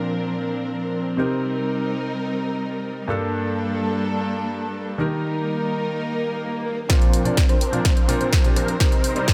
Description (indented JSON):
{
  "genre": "EDM, festival progressive house",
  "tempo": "126 BPM",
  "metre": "4/4",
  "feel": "straight",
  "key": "Bb major",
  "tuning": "A4 = 442 Hz",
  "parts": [
    { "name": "clear grand piano", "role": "accompaniment", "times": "0.0-9.3 s", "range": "G2 to D5", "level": "-29 LUFS", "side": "equal", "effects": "sidechain pumping, digital delay" },
    { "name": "dark studio string section", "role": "sustained chords", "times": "0.0-9.3 s", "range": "F3 to Bb4", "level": "-29 LUFS", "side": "equal", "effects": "sidechain pumping" },
    { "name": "swell and riser", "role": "sound effects", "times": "6.1-9.3 s", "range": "none", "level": "-37 LUFS", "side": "equal", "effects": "none" },
    { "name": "unison lead", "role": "arpeggios", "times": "6.9-9.3 s", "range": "C5", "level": "-32 LUFS", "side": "equal", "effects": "sidechain pumping, digital delay" },
    { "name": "supersaw chords", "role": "riff", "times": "6.9-9.3 s", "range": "F3 to C5", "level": "-29 LUFS", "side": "equal", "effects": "analog chorus, sidechain pumping, low-pass filter, digital delay" },
    { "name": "big-room dance drum kit", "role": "drums", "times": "6.9-9.3 s", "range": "hi-hat, rim click, snare drum", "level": "-29 LUFS", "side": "equal", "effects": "high-pass filter on snare, low-pass filter on snare, high-pass filter on hats, low-pass filter on hats" },
    { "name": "electronic kick drum", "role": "drums", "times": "6.9-9.3 s", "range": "none", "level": "-20 LUFS", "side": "equal", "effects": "none" }
  ],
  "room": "light reverb, digital ambience",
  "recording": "none",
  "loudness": "-22 LUFS",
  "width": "mono",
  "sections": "0.0-6.9 A section; 6.9-9.3 B section",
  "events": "swell 6.1-6.9; build-up 6.9-9.3; drum fill 6.9-9.3; filter sweep on supersaw synth 6.9-9.3; filter sweep on analog synth lead 6.9-9.3",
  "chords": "0.0 Bbadd9; 1.2 Cm7; 3.1 Gmadd9; 5.0 Eb; 6.9 Bbadd9; 8.8 Cm7",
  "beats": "0.23 0.71 | 1.18 1.66 2.14 2.61 | 3.09 3.56 4.04 4.52 | 4.99 5.47 5.95 6.42 | 6.90 7.37 7.85 8.33 | 8.80 9.28"
}